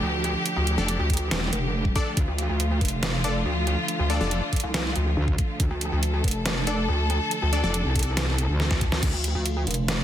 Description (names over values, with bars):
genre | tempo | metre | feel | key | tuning
heavy wobble dubstep | 140 BPM | 4/4 | half-time | D minor | A4 = 438 Hz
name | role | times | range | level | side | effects
clear studio string section | sustained chords | 0.0-10.0 s | D3 to A4 | -29 LUFS | equal | sidechain pumping, low-pass filter
pulsing pluck wobble bass | bass | 0.0-10.0 s | F1 to D2 | -25 LUFS | equal | chorus, overdrive
dubstep drum kit | drums | 0.2-10.0 s | crash cymbal, hi-hat, snare drum | -29 LUFS | right 1 dB | none
supersaw stab | stabs | 0.8-7.8 s | D4 to D5 | -33 LUFS | left 3 dB | digital delay
metallic wobble bass | bass | 0.8-9.1 s | E1 to D2 | -25 LUFS | equal | chorus, overdrive
electronic kick drum | drums | 1.1-9.1 s | none | -25 LUFS | equal | none
room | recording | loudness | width
light reverb, digital ambience | dense, heavily limited modern master | -22 LUFS | side -11 dB against mid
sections
0.0-9.0 A section; 9.0-10.0 A section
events
drop 0.0-9.0, 9.0-10.0; drum fill 8.6-9.0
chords
0.0 Dm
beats
0.03 | 0.46 0.88 1.31 1.74 | 2.17 2.60 3.03 3.46 | 3.88 4.31 4.74 5.17 | 5.60 6.03 6.46 6.88 | 7.31 7.74 8.17 8.60 | 9.03 9.46 9.88